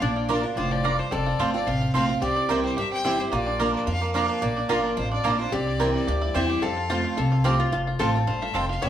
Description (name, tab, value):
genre	bluegrass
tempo	218 BPM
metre	4/4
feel	swing 53% on 8ths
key	F major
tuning	A4 = 441 Hz
part	bluegrass banjo	melody	0.0-8.9 s	F3 to Bb4	-30 LUFS	right 3 dB	plate reverb
part	clear fiddle	melody	0.0-8.9 s	Bb4 to G5	-30 LUFS	left 4 dB	plate reverb
part	lap resonator guitar	second line	0.0-8.9 s	D4 to C#5	-30 LUFS	left 3 dB	none
part	picked acoustic archtop guitar	accompaniment	0.0-8.9 s	E2 to F4	-27 LUFS	equal	none
part	upright bass	bass	0.0-8.9 s	E1 to F2	-29 LUFS	equal	none
part	mandolin	stabs	0.3-8.6 s	Bb3 to Bb5	-28 LUFS	right 4 dB	none
room	moderate studio ambience, RT60 0.5 s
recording	none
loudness	-22 LUFS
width	side -10 dB against mid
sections	0.0-7.7 A section; 7.7-8.9 B section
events	fiddle solo 7.7-8.9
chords	0.0 Bb; 1.1 F; 2.2 C; 3.3 Bb; 5.5 C; 6.6 F